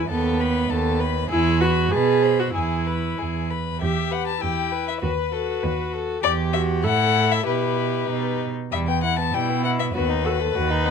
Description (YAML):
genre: quick classical-period movement for string quartet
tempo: 98 BPM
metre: 2/4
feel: straight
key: E major, E minor from 3.8 s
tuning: A4 = 440 Hz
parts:
  - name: warm violin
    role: melody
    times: 0.0-10.9 s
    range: B4 to B5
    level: -26 LUFS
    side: left 10 dB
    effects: none
  - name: rich violin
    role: second line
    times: 0.0-10.9 s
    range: G3 to B#4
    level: -28 LUFS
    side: left 6 dB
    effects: none
  - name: rich cello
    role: bass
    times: 0.0-10.9 s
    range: D#2 to B2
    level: -24 LUFS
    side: right 4 dB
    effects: none
  - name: warm viola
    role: accompaniment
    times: 0.1-10.9 s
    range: B3 to B4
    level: -25 LUFS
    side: right 2 dB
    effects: none
room: light reverb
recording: none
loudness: -20 LUFS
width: side -6 dB against mid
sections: 0.0-3.8 A section; 3.8-10.9 B section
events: none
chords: 0.1 B7/D#; 1.3 E; 1.9 G#7#9/B; 2.5 E; 3.8 Em; 5.0 B7/D#; 6.2 Em; 6.8 A5; 7.5 Em/B; 8.7 Em; 9.9 B/D#